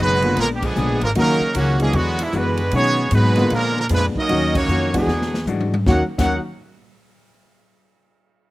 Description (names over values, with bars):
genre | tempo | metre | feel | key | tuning
jazz, big band swing | 153 BPM | 4/4 | swing 64% on 8ths | Eb minor | A4 = 440 Hz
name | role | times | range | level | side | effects
bright trumpet section | melody | 0.0-6.4 s | Gb3 to Gb5 | -21 LUFS | right 2 dB | none
mellow trombone section | second line | 0.0-6.4 s | G#2 to Gb4 | -25 LUFS | right 2 dB | none
hollow-body jazz guitar | accompaniment | 0.0-6.3 s | Bb2 to Gb4 | -26 LUFS | left 4 dB | none
upright bass | bass | 0.0-6.4 s | F#1 to B2 | -21 LUFS | equal | none
warm concert grand piano | accompaniment | 0.2-6.4 s | D3 to Gb4 | -22 LUFS | left 1 dB | none
swinging big-band drum kit | drums | 0.2-6.3 s | crash cymbal, hi-hat, kick drum, ride cymbal, snare drum, toms | -28 LUFS | left 1 dB | none
room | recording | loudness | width
little or no reverb | recorded outdoors, with no room sound | -16 LUFS | side -18 dB against mid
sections
0.0-5.9 A section; 5.9-7.4 B section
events
band accent 0.6, 4.5; drum fill 5.1-5.9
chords
0.4 Bb7b9; 1.2 Ebm7; 1.9 E9; 2.7 B6; 3.5 Bb7b9; 4.3 Ebm7; 5.1 E9; 5.9 Ebm7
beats
0.37 0.76 | 1.16 1.55 1.94 2.34 | 2.73 3.12 3.51 3.91 | 4.30 4.69 5.08 5.47 | 5.87 6.26